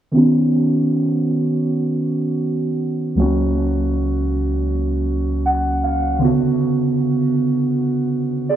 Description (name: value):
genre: R&B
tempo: 79 BPM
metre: 4/4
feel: straight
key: unclear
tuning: A4 = 443 Hz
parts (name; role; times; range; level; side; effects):
- muted felt-like synth keys; solo; 0.1-8.6 s; C#2 to F#5; -16 LUFS; right 1 dB; chorus, low-pass filter, tape echo
room: light reverb, digital ambience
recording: worn, warbling old tape, cassette tape, warbly pitch drift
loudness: -16 LUFS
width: side -10 dB against mid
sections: 0.1-8.6 A section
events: filter sweep on synth keys 0.1-8.6; synth keys fill 5.1-6.2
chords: 0.1 C#9sus4; 3.2 F#/C#; 6.2 Bmadd9